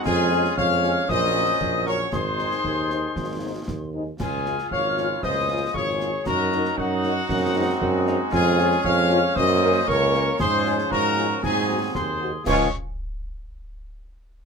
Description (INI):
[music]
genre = military-style march for wind band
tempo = 116 BPM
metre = 2/4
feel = straight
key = Db major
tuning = A4 = 440 Hz
[part]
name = mellow trumpet section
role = melody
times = 0.0-12.7 s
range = Gb4 to F5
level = -26 LUFS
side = left 2 dB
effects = none
[part]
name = mellow woodwind section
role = second line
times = 0.0-12.7 s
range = Eb4 to Db5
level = -29 LUFS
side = equal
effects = none
[part]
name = piccolo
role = second line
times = 0.0-12.8 s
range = Gb5 to F6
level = -28 LUFS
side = left 3 dB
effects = none
[part]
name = warm trombone section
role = sustained chords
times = 0.0-12.7 s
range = Db3 to F4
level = -30 LUFS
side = equal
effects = none
[part]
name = mellow tuba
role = bass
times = 0.1-12.7 s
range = Ab1 to Ab2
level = -25 LUFS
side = right 3 dB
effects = none
[part]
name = concert snare drum, clash cymbals and concert bass drum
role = drums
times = 0.1-12.8 s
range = none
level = -33 LUFS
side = equal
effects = none
[part]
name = mellow French horn section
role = accompaniment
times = 0.3-12.7 s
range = Gb3 to Bb4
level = -28 LUFS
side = left 4 dB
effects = none
[sound]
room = moderate small room ambience, RT60 0.5 s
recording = minimal, uncompressed stereo recording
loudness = -20 LUFS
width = side -5 dB against mid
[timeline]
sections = 0.0-12.5 A section; 12.5-13.5 B section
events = none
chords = 0.1 Db/F; 1.1 Gb/Bb; 2.1 Ab; 4.2 Db; 6.3 Ebm/Gb; 7.3 Ab7/Gb; 8.3 Db/F; 9.4 Gb; 10.4 Db/Ab; 11.4 Ab7; 12.5 Db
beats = | 0.06 0.58 | 1.09 1.61 | 2.13 2.65 | 3.16 3.68 | 4.20 4.71 | 5.23 5.75 | 6.26 6.78 | 7.30 7.82 | 8.33 8.85 | 9.37 9.88 | 10.40 10.92 | 11.43 11.95 | 12.47